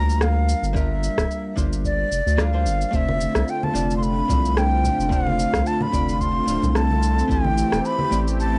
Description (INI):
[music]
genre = sunset chillout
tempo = 110 BPM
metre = 4/4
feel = swing 56% on 16ths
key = unclear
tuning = A4 = 440 Hz
[part]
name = breathy mellow silver concert flute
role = melody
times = 0.0-8.6 s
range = D5 to C6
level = -27 LUFS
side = equal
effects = cassette tape
[part]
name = vintage hollow-body jazz guitar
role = accompaniment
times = 0.0-8.6 s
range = G3 to D5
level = -30 LUFS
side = equal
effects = cassette tape
[part]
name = round analog bass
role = bass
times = 0.0-8.6 s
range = D1 to D2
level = -25 LUFS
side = equal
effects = none
[part]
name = electronic shaker and rim click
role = drums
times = 0.1-8.5 s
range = none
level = -30 LUFS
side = equal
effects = overdrive, cassette tape
[part]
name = electronic kick drum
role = drums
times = 0.8-7.4 s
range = none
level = -28 LUFS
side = equal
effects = cassette tape
[part]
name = lush unison pad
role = sustained chords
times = 2.9-8.6 s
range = D3 to G4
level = -29 LUFS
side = equal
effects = chorus, cassette tape
[part]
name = congas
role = percussion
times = 3.1-8.1 s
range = none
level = -32 LUFS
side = equal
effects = none
[sound]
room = moderate studio reverb, RT60 0.6 s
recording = home recording on cassette, nothing above 11.0 kHz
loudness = -21 LUFS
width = mono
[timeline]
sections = 0.0-8.6 A section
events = none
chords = 0.0 Gm7; 2.9 F6; 7.3 Am7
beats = 0.20 | 0.75 1.29 1.84 2.38 | 2.93 3.48 4.02 4.57 | 5.11 5.66 6.20 6.75 | 7.29 7.84 8.38